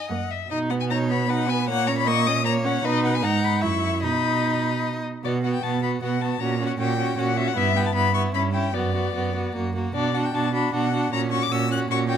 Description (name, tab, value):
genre	quick classical-period movement for string quartet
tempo	153 BPM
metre	3/4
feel	straight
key	B major, B minor from 5.2 s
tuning	A4 = 440 Hz
part	rich violin	melody	0.0-12.2 s	D5 to F#6	-26 LUFS	left 10 dB	none
part	clear violin	second line	0.0-12.2 s	E4 to F#5	-30 LUFS	left 3 dB	none
part	clear viola	accompaniment	0.1-12.2 s	A#3 to E4	-27 LUFS	right 2 dB	none
part	rich cello	bass	0.1-12.2 s	F#2 to B2	-25 LUFS	right 5 dB	none
room	moderate recital hall reverb, RT60 1.7 s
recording	close, detailed microphones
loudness	-21 LUFS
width	side -8 dB against mid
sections	0.0-5.2 A section; 5.2-12.2 B section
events	none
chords	0.1 F#; 0.5 B; 1.7 A#madd11; 2.8 B; 3.2 G#m; 3.6 F#5; 4.0 B; 5.2 B5; 6.4 F#/A#; 7.6 Em/G; 8.3 C#dim/G; 8.7 Bm/F#; 9.6 F#; 9.9 Bm; 11.1 F#/A#